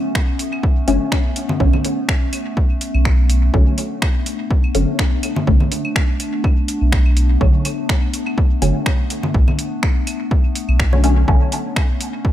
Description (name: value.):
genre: dub techno.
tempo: 124 BPM.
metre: 4/4.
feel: swing 55% on 16ths.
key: B minor.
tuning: A4 = 440 Hz.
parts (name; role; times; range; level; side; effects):
warbly tape-like pad; sustained chords; 0.0-12.3 s; A3 to D4; -25 LUFS; left 2 dB; chorus, built-in reverb, sidechain pumping.
electronic kick drum; drums; 0.1-12.3 s; none; -16 LUFS; equal; studio ambience.
deep house drum kit; drums; 0.2-12.1 s; finger snaps, hi-hat; -24 LUFS; equal; studio ambience, dub echo.
claves and congas; percussion; 0.5-11.9 s; none; -26 LUFS; left 1 dB; sidechain pumping on perc, studio ambience, dub echo.
filtered dub chord stab; stabs; 0.9-11.5 s; D3 to C#4; -22 LUFS; left 1 dB; phaser, cassette tape, sidechain pumping, dub echo.
pure sine sub bass; bass; 0.9-11.4 s; F#1 to B1; -15 LUFS; equal; sidechain pumping.
room: light reverb.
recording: none.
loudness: -15 LUFS.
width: side -12 dB against mid.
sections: 0.0-12.3 A section.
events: filter sweep on synth stab 0.0-12.3.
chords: 0.0 Bm7.